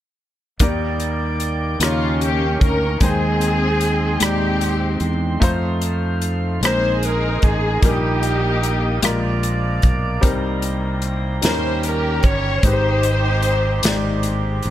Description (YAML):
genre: slow gospel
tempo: 50 BPM (dotted quarters)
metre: 6/8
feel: straight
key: Eb major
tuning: A4 = 441 Hz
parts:
  - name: warm grand piano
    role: accompaniment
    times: 0.6-14.7 s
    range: Ab2 to G5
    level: -24 LUFS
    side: left 2 dB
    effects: none
  - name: accordion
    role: sustained chords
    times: 0.6-14.7 s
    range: Eb3 to D5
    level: -32 LUFS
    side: right 2 dB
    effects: light tremolo tuning
  - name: mellow tonewheel organ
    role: sustained chords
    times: 0.6-14.7 s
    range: Ab3 to Eb6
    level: -28 LUFS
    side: right 3 dB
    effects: slow rotary speaker
  - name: fingered electric bass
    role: bass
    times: 0.6-14.7 s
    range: G1 to F2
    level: -22 LUFS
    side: equal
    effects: none
  - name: natural country drum kit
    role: drums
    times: 0.6-14.7 s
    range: hi-hat, kick drum, rim click, snare drum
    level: -19 LUFS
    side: equal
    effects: none
  - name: warm alto saxophone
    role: melody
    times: 1.8-14.2 s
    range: F4 to Db5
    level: -25 LUFS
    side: right 4 dB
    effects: none
  - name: warm studio string section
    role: melody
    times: 1.8-14.2 s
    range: Bb3 to Db5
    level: -24 LUFS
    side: left 4 dB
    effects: none
room: light reverb, small room ambience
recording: none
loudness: -16 LUFS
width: side -12 dB against mid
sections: 0.6-14.7 A section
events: none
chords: 0.6 Ebmaj7; 1.8 Eb7; 3.0 Abmaj7/Eb; 5.4 F7; 6.6 Bb9sus4; 7.8 Eb/Bb; 9.0 Bb7; 10.2 Cm7; 11.4 Eb7; 12.6 Abmaj7